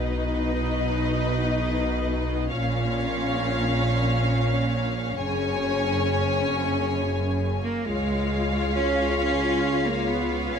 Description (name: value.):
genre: cinematic.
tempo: free time.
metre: none.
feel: none.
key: unclear.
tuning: A4 = 440 Hz.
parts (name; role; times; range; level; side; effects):
warm symphonic violin section; melody; 0.0-10.6 s; D#5 to G#5; -31 LUFS; left 5 dB; none.
rich symphonic violin section; second line; 0.0-10.6 s; B4 to C#5; -32 LUFS; left 2 dB; none.
warm symphonic viola section; accompaniment; 0.0-10.6 s; C#4 to E#4; -32 LUFS; right 1 dB; none.
dark French horn section; sustained chords; 0.0-10.6 s; B3 to A#4; -30 LUFS; left 8 dB; none.
clear symphonic cello section; bass; 0.0-10.6 s; F#2 to C#4; -28 LUFS; right 3 dB; none.
clear symphonic double bass section; bass; 0.0-10.6 s; F#1 to C#2; -29 LUFS; right 2 dB; none.
room: light reverb.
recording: close, detailed microphones.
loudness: -22 LUFS.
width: side -7 dB against mid.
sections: 0.0-7.9 A section; 7.9-10.6 B section.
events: build-up 0.0-7.9.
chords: 0.0 B; 2.5 A#m; 5.2 F#sus2; 7.9 C#.